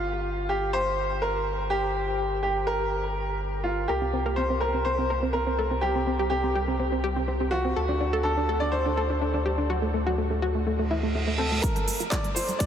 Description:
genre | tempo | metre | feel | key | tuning
progressive house | 124 BPM | 4/4 | straight | unclear | A4 = 440 Hz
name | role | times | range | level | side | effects
bright baby grand piano | melody | 0.0-12.7 s | F4 to D5 | -27 LUFS | equal | vintage 12-bit sampler grit, analog delay
saturated sub bass | bass | 0.0-11.6 s | G1 to D2 | -30 LUFS | equal | sidechain pumping
analog pluck | arpeggios | 3.9-12.7 s | G3 to Bb4 | -28 LUFS | equal | chorus, vintage 12-bit sampler grit, sidechain pumping, analog delay
reverse cymbal and riser | sound effects | 10.9-12.7 s | none | -33 LUFS | right 4 dB | none
big-room dance drum kit | drums | 11.6-12.7 s | handclaps, hi-hat, shaker | -31 LUFS | right 2 dB | studio reverb
electronic kick drum | drums | 11.6-12.7 s | none | -27 LUFS | equal | studio reverb
room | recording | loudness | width
wet huge ambient reverb, RT60 8.6 s | dreamy mix soaked in reverb | -24 LUFS | side -9 dB against mid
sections
0.0-11.6 A section; 11.6-12.7 B section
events
reverse cymbal 10.9-11.6; build-up 11.6-12.7; riser 11.6-12.7; filter sweep on synth arpeggio sound 11.6-12.7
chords
0.0 Gm; 3.9 C5; 7.8 D7; 11.6 N.C.

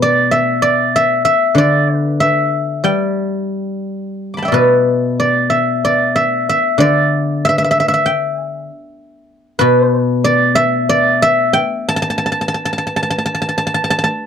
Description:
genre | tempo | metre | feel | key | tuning
chinese traditional, Chinese solo plucked strings | 93 BPM | 4/4 | uneven beats, rubato | unclear | A4 = 440 Hz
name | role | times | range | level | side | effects
guzheng | solo | 0.0-14.3 s | B2 to D6 | -13 LUFS | equal | none
room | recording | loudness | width
little or no reverb | dry, close 1970s-style studio recording | -12 LUFS | side -8 dB against mid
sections
0.0-14.3 A section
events
none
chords
none

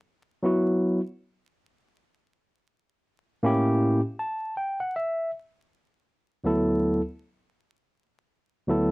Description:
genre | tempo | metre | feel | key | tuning
hip hop | 80 BPM | 4/4 | swing 60% on 16ths | D major | A4 = 440 Hz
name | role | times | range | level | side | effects
barky tine electric piano | solo | 0.4-8.9 s | D2 to A5 | -23 LUFS | equal | overdrive, cassette tape
room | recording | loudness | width
light reverb | home recording on cassette, vinyl crackle | -24 LUFS | side -24 dB against mid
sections
0.0-8.9 A section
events
tine electric piano fill 3.8-5.3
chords
0.0 B5; 2.3 A7b9; 5.3 D69

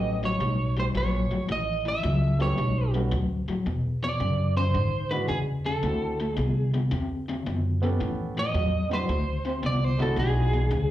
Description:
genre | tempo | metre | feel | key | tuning
electric blues shuffle | 111 BPM | 4/4 | swing 68% on 8ths | unclear | A4 = 440 Hz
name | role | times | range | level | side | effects
lightly driven lead guitar | melody | 0.0-10.9 s | G#4 to E5 | -29 LUFS | right 2 dB | plate reverb, slapback echo
warm grand piano | accompaniment | 0.0-10.7 s | G#3 to A4 | -34 LUFS | right 3 dB | plate reverb, slapback echo
overdriven electric guitar | riff | 0.0-10.9 s | E2 to C4 | -29 LUFS | left 2 dB | tremolo, slapback echo
upright bass | bass | 0.0-10.9 s | A1 to A2 | -27 LUFS | equal | none
room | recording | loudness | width
light reverb | live gig heard through the venue's PA, club reverb | -24 LUFS | side -13 dB against mid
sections
0.0-10.9 A section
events
none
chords
0.0 A9; 3.7 E9; 5.8 D9; 8.0 A9; 9.1 D9; 10.2 E9

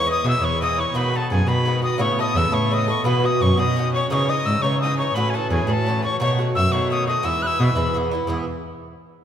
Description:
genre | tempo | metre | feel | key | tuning
celtic folk, Celtic jig | 114 BPM (dotted quarters) | 6/8 | straight | E major | A4 = 439 Hz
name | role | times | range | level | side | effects
bright reedy wooden whistle | melody | 0.0-8.0 s | G#5 to F#6 | -24 LUFS | left 2 dB | none
clear fiddle | second line | 0.0-8.0 s | G#4 to E5 | -28 LUFS | left 3 dB | none
Irish bouzouki | accompaniment | 0.0-8.4 s | G#2 to A4 | -24 LUFS | right 2 dB | none
rich cello | bass | 0.0-8.5 s | E2 to C#3 | -22 LUFS | equal | none
room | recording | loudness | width
wet concert hall reverb, RT60 2.1 s | recorded in a church or concert hall | -18 LUFS | side -9 dB against mid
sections
0.0-8.3 A section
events
none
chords
0.0 E; 0.9 B6; 2.0 Aadd9; 3.1 Bsus4; 3.6 Badd9; 4.1 C#madd9; 5.2 A6; 6.2 B7; 7.2 E

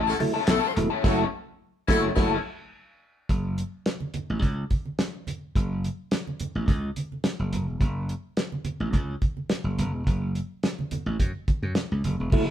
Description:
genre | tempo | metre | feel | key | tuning
funk | 106 BPM | 4/4 | straight | F# minor | A4 = 440 Hz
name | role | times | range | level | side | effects
raw garage guitar | accompaniment | 0.0-2.4 s | A3 to A4 | -27 LUFS | left 7 dB | wah, overdrive
slap bass | bass | 0.0-12.5 s | E1 to F#2 | -28 LUFS | equal | none
clear horn section | second line | 0.1-2.3 s | E4 to A4 | -30 LUFS | left 4 dB | none
mellow tonewheel organ | stabs | 0.2-2.4, 12.3-12.5 s | F#3 to E4 | -27 LUFS | right 2 dB | chorus vibrato, slow rotary speaker
cloth-damped thuddy drum kit | drums | 0.2-12.5 s | crash cymbal, handclaps, hi-hat, kick drum, snare drum | -26 LUFS | equal | none
congas | percussion | 0.2-12.2 s | none | -35 LUFS | right 3 dB | none
room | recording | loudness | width
moderate studio reverb, RT60 0.8 s | band playing live in one room | -24 LUFS | side -10 dB against mid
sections
0.0-3.3 A section; 3.3-12.3 B section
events
band accent 1.0-3.3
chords
0.0 F#m7; 3.3 F#5

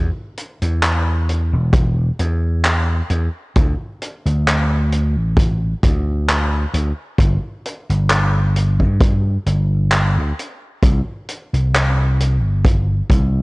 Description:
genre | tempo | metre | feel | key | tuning
vaporwave | 66 BPM | 4/4 | swing 54% on 16ths | unclear | A4 = 440 Hz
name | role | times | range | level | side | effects
vintage slap bass | bass | 0.0-13.4 s | E1 to G2 | -16 LUFS | equal | tube saturation
vintage drum kit | drums | 0.4-13.3 s | handclaps, hi-hat | -21 LUFS | equal | none
kick drum | drums | 1.7-13.3 s | none | -16 LUFS | equal | none
room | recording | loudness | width
little or no reverb | cassette tape, nothing above 10.4 kHz | -15 LUFS | side -25 dB against mid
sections
0.0-13.4 A section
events
none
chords
none

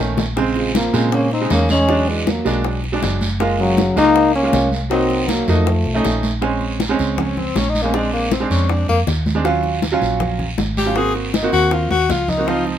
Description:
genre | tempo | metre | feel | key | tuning
Afro-Cuban jazz | 159 BPM | 4/4 | straight | Bb minor | A4 = 439 Hz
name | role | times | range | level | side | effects
bright upright piano | accompaniment | 0.0-12.8 s | Db3 to Gb4 | -21 LUFS | right 4 dB | none
hollow-body short-scale fingered electric bass | bass | 0.0-12.8 s | F#1 to Bb2 | -22 LUFS | equal | none
bongos | percussion | 0.2-12.8 s | none | -26 LUFS | left 6 dB | none
congas | percussion | 0.2-12.8 s | none | -25 LUFS | right 1 dB | none
guiro | percussion | 0.2-12.8 s | none | -29 LUFS | right 3 dB | none
mellow trombone | melody | 0.6-6.2 s | Gb3 to Eb4 | -18 LUFS | left 1 dB | none
warm tenor saxophone | second line | 0.6-12.8 s | Db3 to Ab4 | -21 LUFS | left 4 dB | none
room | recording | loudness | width
light reverb | minimal, uncompressed stereo recording | -15 LUFS | side -10 dB against mid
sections
0.0-6.4 A section; 6.4-12.8 B section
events
drum fill 0.0-0.4, 11.9-12.5; tenor saxophone solo 6.4-12.8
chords
0.4 Bbm9; 1.9 E9; 3.4 Gbmaj9; 4.9 Cm7b5; 5.7 Faug7; 6.4 Bbm7; 7.9 Bb7; 9.5 Ebm9; 11.0 Ab9

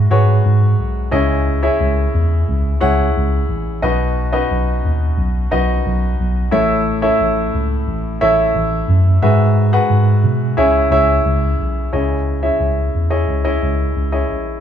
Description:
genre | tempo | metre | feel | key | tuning
piano-driven pop | 89 BPM | 4/4 | straight | C# minor | A4 = 440 Hz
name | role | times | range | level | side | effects
clear baby grand piano | accompaniment | 0.0-14.6 s | G#2 to F#5 | -17 LUFS | left 1 dB | none
mellow tine electric piano | bass | 0.0-14.6 s | A1 to B2 | -16 LUFS | right 1 dB | fast stereo tremolo
room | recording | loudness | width
light reverb | band playing live in one room | -14 LUFS | side -9 dB against mid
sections
0.0-11.9 A section; 11.9-14.6 B section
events
none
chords
0.0 Eadd9/G#; 1.1 C#madd9; 3.8 B; 6.5 A; 9.2 Eadd9/G#; 10.6 C#m; 11.9 C#madd9

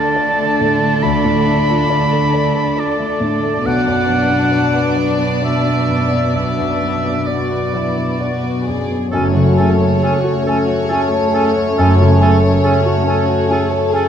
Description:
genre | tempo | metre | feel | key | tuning
cinematic, emotional film score for orchestra | 68 BPM | 3/4 | rubato | unclear | A4 = 440 Hz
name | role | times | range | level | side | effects
warm studio violin section | melody | 0.0-14.1 s | A4 to D5 | -24 LUFS | left 2 dB | none
clear oboe | second line | 0.0-14.1 s | A4 to B5 | -21 LUFS | right 2 dB | none
dark chamber violin section | second line | 0.0-14.1 s | C#4 to A4 | -22 LUFS | left 2 dB | none
dark grand piano | accompaniment | 0.0-14.1 s | B1 to D5 | -20 LUFS | equal | none
dark studio viola section | accompaniment | 0.0-14.1 s | A3 to B3 | -26 LUFS | right 2 dB | none
concert harp | arpeggios | 0.0-14.1 s | F#2 to G#5 | -22 LUFS | left 3 dB | none
dark studio cello section | bass | 0.0-12.5 s | F#2 to D3 | -20 LUFS | right 3 dB | none
hollow concert flute | second line | 9.1-14.0 s | G#5 | -23 LUFS | right 2 dB | none
warm clarinet | second line | 9.1-14.1 s | C#4 | -25 LUFS | right 1 dB | none
mellow French horn section | sustained chords | 9.1-14.1 s | A3 to A4 | -21 LUFS | left 2 dB | none
rich studio double bass section | bass | 9.1-12.5 s | F#1 | -21 LUFS | right 3 dB | none
room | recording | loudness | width
moderate concert hall reverb, RT60 1.9 s | vinyl crackle | -13 LUFS | side -8 dB against mid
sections
0.0-9.1 A section; 9.1-14.1 B section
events
none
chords
0.0 Dm; 3.7 Bm; 9.1 F#madd9

